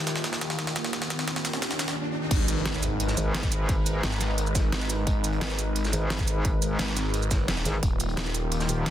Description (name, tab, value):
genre	dark technical drum and bass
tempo	174 BPM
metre	4/4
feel	straight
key	G# dorian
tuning	A4 = 439 Hz
part	sweeping resonant pad	sustained chords	0.0-8.9 s	D#3 to B4	-32 LUFS	left 1 dB	chorus, sidechain pumping
part	phased detuned saw bass	bass	0.0-8.7 s	D#1 to G#1	-30 LUFS	equal	phaser, overdrive, sidechain pumping, high-pass filter
part	riser and impact	sound effects	0.0-3.7 s	none	-35 LUFS	equal	none
part	dubstep drum kit	drums	0.1-8.9 s	crash cymbal, hi-hat, shaker, snare drum	-30 LUFS	right 1 dB	high-pass filter on snare, high-pass filter on hats, high-pass filter on perc, high-pass filter on cymbals
part	crunchy breakbeat drum kit	drums	2.3-8.9 s	hi-hat, snare drum	-39 LUFS	left 1 dB	high-pass filter on hats, high-pass filter on snare, high-pass filter on room
part	electronic kick drum	drums	2.3-7.9 s	none	-26 LUFS	equal	none
part	metallic wobble bass	bass	3.2-8.9 s	D#1 to G#1	-28 LUFS	equal	chorus
room	digital ambience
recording	dense, heavily limited modern master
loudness	-24 LUFS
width	side -11 dB against mid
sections	0.0-2.3 A section; 2.3-8.9 B section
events	build-up 0.0-2.3; drum fill 0.0-2.0; riser 0.0-2.3; drop 2.3-8.9; impact 2.3-3.7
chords	0.0 D#; 2.3 G#m; 7.8 D#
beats	0.24 0.59 | 0.93 1.28 1.62 1.97 | 2.31 2.65 3.00 3.35 | 3.69 4.04 4.38 4.72 | 5.07 5.41 5.76 6.10 | 6.45 6.79 7.14 7.48 | 7.83 8.17 8.52 8.86